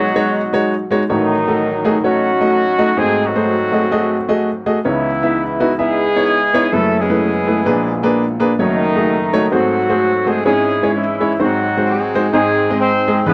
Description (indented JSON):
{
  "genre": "gospel",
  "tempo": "128 BPM",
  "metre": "4/4",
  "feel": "swing 60% on 8ths",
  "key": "unclear",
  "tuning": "A4 = 440 Hz",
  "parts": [
    { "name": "mellow horn section", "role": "melody", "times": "0.0-13.3 s", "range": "D#3 to B#4", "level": "-19 LUFS", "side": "equal", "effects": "none" },
    { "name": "clear baby grand piano", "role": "accompaniment", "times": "0.0-13.3 s", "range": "F#1 to E5", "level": "-18 LUFS", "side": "equal", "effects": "none" }
  ],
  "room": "light reverb",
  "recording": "dry, close 1970s-style studio recording",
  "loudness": "-16 LUFS",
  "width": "mono",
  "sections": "0.0-12.3 A section; 12.3-13.3 B section",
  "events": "none",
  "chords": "0.0 G#m7/B; 1.1 D#m7b5/A; 3.0 G#7b9; 4.8 C#m9; 6.7 F#m11; 7.7 A#7b9; 8.6 D#m7b5/F#; 9.5 G#7b9; 10.5 C#m/G#; 11.4 G#7; 12.3 G#",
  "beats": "0.16 0.63 | 1.09 1.56 2.03 2.50 | 2.97 3.44 3.91 4.38 | 4.85 5.32 5.79 6.25 | 6.72 7.19 7.66 8.13 | 8.59 9.06 9.53 9.99 | 10.46 10.93 11.39 11.86 | 12.32 12.79 13.25"
}